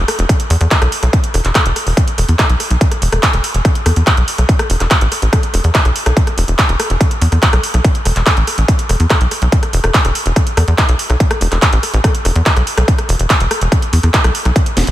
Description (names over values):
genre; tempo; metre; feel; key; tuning
psychedelic trance; 143 BPM; 4/4; straight; unclear; A4 = 442 Hz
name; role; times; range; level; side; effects
tight sequencer bass; bass; 0.0-14.9 s; E1 to E2; -13 LUFS; equal; none
techno drum kit; drums; 0.1-14.9 s; handclaps, hi-hat, rim click, snare drum; -16 LUFS; equal; overdrive, studio reverb
electronic kick drum; drums; 0.3-14.6 s; none; -13 LUFS; equal; distortion, overdrive, studio reverb
room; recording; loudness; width
light reverb; none; -11 LUFS; side -14 dB against mid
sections
0.0-14.9 A section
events
none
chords
none